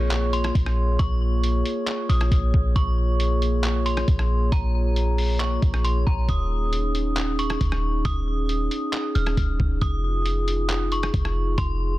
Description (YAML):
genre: hip hop, atmospheric cloud-rap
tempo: 136 BPM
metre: 4/4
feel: half-time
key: Bb minor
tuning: A4 = 439 Hz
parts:
  - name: metallic FM bell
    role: melody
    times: 0.0-12.0 s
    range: Bb5 to F6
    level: -31 LUFS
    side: equal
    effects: chorus, low-pass filter, ping-pong delay
  - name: glass harmonica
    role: sustained chords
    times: 0.0-12.0 s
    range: Bb3 to Db5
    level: -28 LUFS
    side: equal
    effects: sidechain pumping
  - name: clean 808-style bass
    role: bass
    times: 0.0-12.0 s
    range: Eb1 to Bb1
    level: -23 LUFS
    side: equal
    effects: none
  - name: lo-fi sampler-style drum kit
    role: drums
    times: 0.1-11.7 s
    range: handclaps, hi-hat, kick drum, rim click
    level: -26 LUFS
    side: equal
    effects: soft clipping on snare
room: digital ambience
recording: dense, heavily limited modern master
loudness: -20 LUFS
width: side -17 dB against mid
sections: 0.0-12.0 A section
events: none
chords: 0.0 Bbm7; 6.3 Eb7sus4; 9.8 Fm7